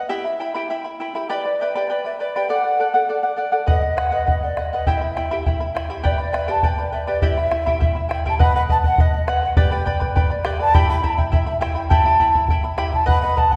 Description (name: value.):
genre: andean folk, Andean ensemble.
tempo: 102 BPM.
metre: 2/4.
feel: straight.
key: E minor.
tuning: A4 = 441 Hz.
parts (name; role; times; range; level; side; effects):
charango; accompaniment; 0.0-13.6 s; E4 to B5; -26 LUFS; equal; none.
mellow hollow large quena; melody; 0.1-13.6 s; D5 to B5; -24 LUFS; equal; none.
bombo; percussion; 3.7-13.6 s; none; -22 LUFS; equal; none.
room: wet scoring stage reverb, RT60 1.7 s.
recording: recorded in a church or concert hall.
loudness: -20 LUFS.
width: mono.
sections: 0.0-8.4 A section; 8.4-13.6 B section.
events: none.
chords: 0.1 Em; 1.3 G; 2.5 D; 3.7 B; 4.9 Em; 6.0 G; 7.2 Em; 8.4 B; 9.6 G; 10.7 Em.